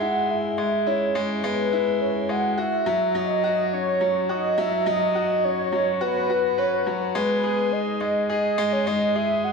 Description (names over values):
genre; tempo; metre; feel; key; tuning
electronica; 105 BPM; 4/4; straight; unclear; A4 = 440 Hz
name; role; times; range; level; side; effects
warm velvety synth lead; melody; 0.0-9.5 s; B4 to F#5; -23 LUFS; right 1 dB; chorus
bright concert grand piano; riff; 0.0-9.5 s; F#3 to B4; -25 LUFS; left 2 dB; none
room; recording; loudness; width
wet lush hall reverb, RT60 1.9 s, small room ambience; none; -21 LUFS; side -4 dB against mid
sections
0.0-7.2 A section; 7.2-9.5 B section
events
build-up 0.0-7.2; filter sweep on soft synth lead 0.0-7.2; drop 7.2-9.5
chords
0.0 C#m7; 2.6 F#sus4; 7.2 N.C.